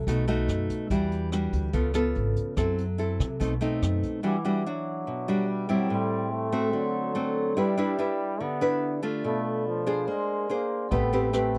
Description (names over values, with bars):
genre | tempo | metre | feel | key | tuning
bossa nova | 144 BPM | 4/4 | straight | E minor | A4 = 440 Hz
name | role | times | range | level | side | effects
nylon-string guitar | accompaniment | 0.0-11.6 s | A2 to C5 | -30 LUFS | equal | none
upright bass | bass | 0.0-4.0, 10.9-11.6 s | G#1 to C3 | -31 LUFS | equal | none
jazz brush drum kit | drums | 0.1-4.1, 10.9-11.6 s | hi-hat, kick drum, rim click | -36 LUFS | equal | none
bright trombone | second line | 4.2-11.6 s | E3 to B3 | -36 LUFS | equal | none
vibraphone with medium mallets | accompaniment | 4.2-11.6 s | G4 to D6 | -35 LUFS | equal | none
room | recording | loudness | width
light reverb | dry, close 1970s-style studio recording | -27 LUFS | mono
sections
0.0-4.2 A section; 4.2-11.6 B section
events
none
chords
0.1 B7; 0.9 Em9; 1.7 C#7b13; 2.6 F#m7b5; 3.4 B7b9; 4.2 Em9; 5.9 Am7; 6.7 D7; 7.6 G6; 9.2 Bm7b5; 10.1 A#9; 10.9 Am9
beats
0.07 0.49 | 0.90 1.32 1.74 2.15 | 2.57 2.99 3.40 3.82 | 4.24 4.65 5.07 5.49 | 5.91 6.32 6.74 7.16 | 7.58 7.99 8.41 8.83 | 9.24 9.66 10.08 10.50 | 10.92 11.34